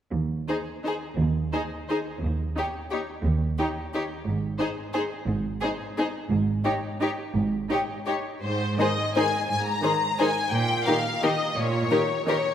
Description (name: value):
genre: classical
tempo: 159-190 BPM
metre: 3/4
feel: rubato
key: Ab major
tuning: A4 = 440 Hz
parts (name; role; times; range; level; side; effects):
- rich chamber double bass section; bass; 0.1-7.6 s; Ab1 to Eb2; -30 LUFS; right 2 dB; none
- rich symphonic cello section; bass; 0.1-11.8 s; Eb2 to Bb2; -30 LUFS; right 3 dB; none
- clear studio violin section; melody; 0.5-12.5 s; C5 to Bb5; -29 LUFS; left 3 dB; none
- rich chamber violin section; second line; 0.5-12.4 s; G4 to C5; -30 LUFS; left 2 dB; none
- rich chamber viola section; accompaniment; 0.5-12.3 s; Eb3 to Eb4; -30 LUFS; equal; none
room: wet concert hall reverb, RT60 1.9 s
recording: none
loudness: -24 LUFS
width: side -10 dB against mid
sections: 0.1-8.4 A section; 8.4-12.5 B section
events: none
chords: 0.1 N.C.; 4.3 Ab5; 10.5 Eb7/Bb